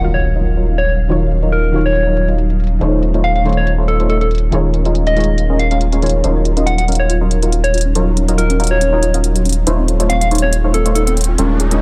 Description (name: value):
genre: future bass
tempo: 140 BPM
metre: 4/4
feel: swing 54% on 16ths, half-time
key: Eb minor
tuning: A4 = 439 Hz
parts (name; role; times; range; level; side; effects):
- soft round pluck; accompaniment; 0.0-6.2 s; Eb3 to F5; -26 LUFS; equal; subtle chorus, vintage 12-bit sampler grit, tape echo
- ethereal airy pad; sustained chords; 0.4-11.8 s; Gb3 to F5; -30 LUFS; equal; none
- supersaw stab; riff; 0.0-11.8 s; Gb3 to F5; -22 LUFS; equal; low-pass filter
- saturated sub bass; bass; 0.0-11.8 s; Eb1; -18 LUFS; equal; none
- electronic hi-hat; drums; 0.0-11.8 s; none; -26 LUFS; equal; low-pass filter on hats, low-pass filter on snare
- impact and riser; sound effects; 0.0-1.1, 10.5-11.8 s; none; -29 LUFS; equal; none
- soft struck synth lead; melody; 0.1-11.1 s; A4 to Gb5; -22 LUFS; equal; chorus, tape echo
- soft round pluck; arpeggios; 6.2-11.7 s; C4 to Ab4; -26 LUFS; equal; chorus, tape echo
room: little or no reverb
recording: none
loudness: -15 LUFS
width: mono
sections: 0.0-11.8 A section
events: impact 0.0-1.1; filter sweep on drum 0.0-11.8; riser 10.5-11.8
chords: 0.0 Ebm9; 2.8 F7b13/Eb; 4.5 Bbm7/Eb; 6.2 Ebm9; 9.7 F7b13/Eb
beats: 0.24 0.67 | 1.10 1.53 1.95 2.38 | 2.81 3.24 3.67 4.10 | 4.53 4.95 5.38 5.81 | 6.24 6.67 7.10 7.53 | 7.95 8.38 8.81 9.24 | 9.67 10.10 10.53 10.95 | 11.38 11.81